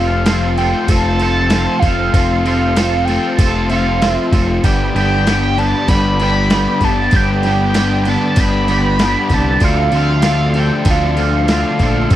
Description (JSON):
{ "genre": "indie rock", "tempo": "96 BPM", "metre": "4/4", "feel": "straight", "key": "unclear", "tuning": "A4 = 438 Hz", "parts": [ { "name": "overdriven synth lead", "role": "melody", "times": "0.0-12.2 s", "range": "F5 to B5", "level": "-19 LUFS", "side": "right 1 dB", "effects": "phaser, slapback echo" }, { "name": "lush unison pad", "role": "sustained chords", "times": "0.0-12.2 s", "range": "A4 to D6", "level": "-30 LUFS", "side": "equal", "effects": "none" }, { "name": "overdriven electric guitar", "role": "riff", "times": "0.0-12.2 s", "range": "G2 to F4", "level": "-19 LUFS", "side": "left 5 dB", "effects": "none" }, { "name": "twangy electric guitar", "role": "riff", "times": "0.0-12.2 s", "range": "G2 to A4", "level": "-21 LUFS", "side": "right 7 dB", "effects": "ensemble chorus, slapback echo" }, { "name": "growling picked electric bass", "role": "bass", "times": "0.0-12.2 s", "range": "F1 to D2", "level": "-18 LUFS", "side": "equal", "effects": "overdrive" }, { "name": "dusty soul sampler-style drum kit", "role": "drums", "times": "0.3-12.2 s", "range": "crash cymbal, kick drum, snare drum", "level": "-18 LUFS", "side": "equal", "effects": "overdrive" } ], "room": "little or no reverb", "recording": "dry, close 1970s-style studio recording", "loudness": "-12 LUFS", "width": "side -13 dB against mid", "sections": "0.0-12.2 A section", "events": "none", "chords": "0.0 F; 4.7 G; 9.6 Dm7", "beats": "0.28 0.90 1.53 | 2.15 2.78 3.40 4.03 | 4.65 5.27 5.90 6.52 | 7.14 7.76 8.39 9.01 | 9.63 10.25 10.87 11.49 | 12.11" }